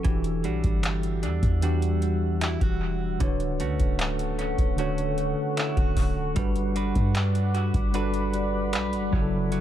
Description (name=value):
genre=contemporary R&B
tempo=76 BPM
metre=4/4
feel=straight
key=E dorian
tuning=A4 = 440 Hz
part: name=mellow tine electric piano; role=accompaniment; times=0.0-9.6 s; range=C#3 to C#5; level=-29 LUFS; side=equal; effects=medium stereo tremolo
part: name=direct-recorded clean electric guitar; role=arpeggios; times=0.0-9.6 s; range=D3 to B4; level=-33 LUFS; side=right 5 dB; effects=analog delay
part: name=booming analog drum machine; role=drums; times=0.0-9.6 s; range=handclaps, hi-hat, kick drum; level=-26 LUFS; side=equal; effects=none
part: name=deep dark ambient pad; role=sustained chords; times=0.1-9.6 s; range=G3 to E6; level=-34 LUFS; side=left 2 dB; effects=chorus, built-in reverb
part: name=clean 808-style bass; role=bass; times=0.1-9.6 s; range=D1 to G2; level=-28 LUFS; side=equal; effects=none
part: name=vibraphone with soft mallets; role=texture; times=0.4-9.6 s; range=F#4 to E5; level=-38 LUFS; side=left 1 dB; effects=analog delay
room=little or no reverb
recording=echo-heavy mix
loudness=-23 LUFS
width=side -11 dB against mid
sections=0.0-9.6 A section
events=none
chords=0.0 Em9; 3.2 Dmaj7; 6.4 Gmaj7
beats=| 0.04 0.83 1.62 2.41 | 3.20 3.99 4.78 5.57 | 6.36 7.15 7.94 8.73 | 9.52